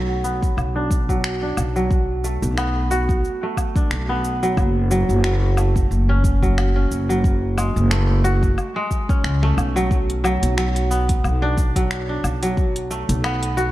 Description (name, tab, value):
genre	organic downtempo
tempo	90 BPM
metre	4/4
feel	swing 56% on 16ths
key	unclear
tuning	A4 = 442 Hz
part	kora	arpeggios	0.0-13.7 s	F#3 to F#4	-23 LUFS	right 1 dB	low-pass filter, tape echo
part	upright bass	bass	0.0-13.7 s	F#1 to C#2	-20 LUFS	equal	sidechain pumping
part	deep house drum kit	drums	0.2-13.7 s	cabasa, finger snaps, hi-hat, woodblock	-29 LUFS	left 1 dB	small room ambience
part	electronic kick drum	drums	0.4-12.7 s	none	-20 LUFS	equal	small room ambience
room	light reverb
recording	dark, warm production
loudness	-17 LUFS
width	side -16 dB against mid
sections	0.0-13.7 A section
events	filter sweep on kora 0.0-13.7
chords	0.0 Bm7; 4.6 F#madd9; 9.9 Bm7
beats	0.57 1.24 | 1.91 2.57 3.24 3.91 | 4.57 5.24 5.91 6.57 | 7.24 7.91 8.57 9.24 | 9.91 10.57 11.24 11.91 | 12.57 13.24